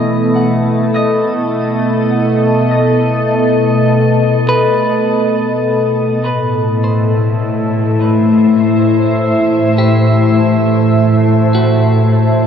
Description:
ambient; 51 BPM; 3/4; straight; A4 = 440 Hz
glassy FM pad; sustained chords; 0.0-12.5 s; A2 to E5; -12 LUFS; left 1 dB; ensemble chorus, built-in reverb
clean electric guitar; arpeggios; 0.0-12.5 s; F#4 to D#5; -22 LUFS; right 2 dB; diffuse ambient delay
analog drone; drone; 0.0-12.5 s; E3 to E4; -20 LUFS; right 1 dB; chorus
warm studio cello section; bass; 6.2-12.5 s; A2; -17 LUFS; right 1 dB
wet huge ambient reverb, RT60 6.9 s; -10 LUFS; side -8 dB against mid
0.0-6.2 A section; 6.2-12.5 A section
fade-in on clean electric guitar 6.2-12.5; filter sweep on ambient pad 6.2-12.5
0.0 B7; 6.2 Am
0.36 1.54 | 2.72 3.89 5.07 | 6.25 7.42 8.60 | 9.78 10.95 12.13

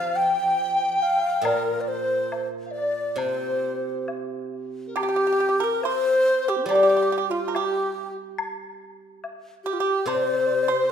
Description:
chinese traditional, Chinese chamber ensemble; 70 BPM; 4/4; rubato; C shang mode; A4 = 437 Hz
breathy bright low xiao; melody; 0.0-10.9 s; C4 to G5; -24 LUFS; left 2 dB
mellow hollow large dizi; second line; 0.0-10.9 s; F4 to G5; -27 LUFS; left 1 dB
steel-string zither; accompaniment; 0.0-10.9 s; Bb2 to G3; -28 LUFS; equal
woodblock; percussion; 1.4-10.3 s; -35 LUFS; left 4 dB
pipa; second line; 5.0-10.9 s; F4 to C5; -28 LUFS; right 8 dB
moderate scoring stage reverb, RT60 1.6 s; minimal, uncompressed stereo recording; -21 LUFS; side -8 dB against mid
0.0-5.0 A section; 5.0-10.9 B section
0.60 | 1.46 2.32 3.19 4.08 | 4.96 5.83 6.68 7.54 | 8.39 9.23 10.07 10.91

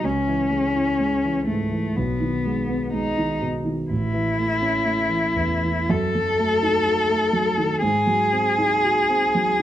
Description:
classical, romantic duo for cello and grand piano; 62 BPM; 4/4; rubato; A4 = 441 Hz
rich cello; melody; 0.0-9.6 s; A3 to A4; -21 LUFS; left 1 dB
dark concert grand piano; accompaniment; 0.0-9.6 s; A1 to F#4; -24 LUFS; right 2 dB
light reverb; close, detailed microphones; -19 LUFS; side -12 dB against mid
0.0-9.6 A section
0.0 C#m; 2.0 G#m/B; 3.9 A; 5.9 D#dim/F#; 7.8 G#7
| 0.04 0.99 1.97 2.94 | 3.90 4.86 5.90 6.87 | 7.83 8.83

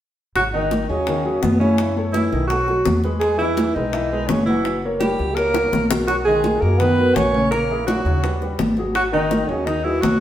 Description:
Afro-Cuban jazz; 168 BPM; 4/4; straight; G# minor; A4 = 441 Hz
clear alto saxophone; melody; 0.4-10.2 s; B3 to C#5; -21 LUFS; right 2 dB
clear trombone; second line; 0.4-10.2 s; B2 to C#4; -26 LUFS; left 2 dB
upright bass; bass; 0.4-10.2 s; F#1 to F#2; -25 LUFS; equal
bongos; percussion; 0.4-10.2 s; -26 LUFS; left 3 dB
congas; percussion; 0.4-10.2 s; -24 LUFS; equal
warm grand piano; accompaniment; 0.5-10.1 s; C#3 to F#5; -24 LUFS; left 2 dB
wet stone room reverb, RT60 1.2 s; band playing live in one room; -17 LUFS; side -11 dB against mid
0.4-10.2 A section
drum fill 5.5-6.1
0.4 G#5; 1.8 F#m7; 2.5 B5; 3.2 Emaj9; 4.7 F#; 6.1 Bmaj9; 7.5 A#m7b5; 8.2 D#aug; 8.9 G#5
| 0.36 0.71 1.07 1.43 | 1.79 2.15 2.50 2.86 | 3.22 3.58 3.94 4.29 | 4.65 5.01 5.37 5.73 | 6.08 6.44 6.80 7.16 | 7.52 7.88 8.23 8.59 | 8.95 9.31 9.67 10.03

